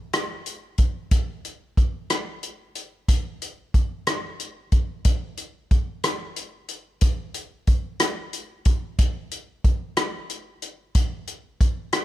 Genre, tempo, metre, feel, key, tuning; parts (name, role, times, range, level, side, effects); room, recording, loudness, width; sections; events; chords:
gospel; 61 BPM (dotted quarters); 6/8; straight
swinging big-band drum kit; drums; 0.1-12.0 s; hi-hat, kick drum, rim click; -21 LUFS; equal
little or no reverb; -22 LUFS; side -14 dB against mid
0.0-12.0 A section